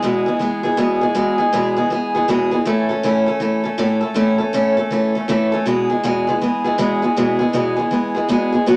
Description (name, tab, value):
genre	rock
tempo	160 BPM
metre	4/4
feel	swing 63% on 8ths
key	E major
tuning	A4 = 440 Hz
part	picked acoustic archtop guitar	solo	0.0-8.8 s	E2 to A4	-18 LUFS	equal	none
room	light reverb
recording	none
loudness	-18 LUFS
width	mono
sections	0.0-8.8 A section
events	none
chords	0.0 E; 2.7 A; 5.7 E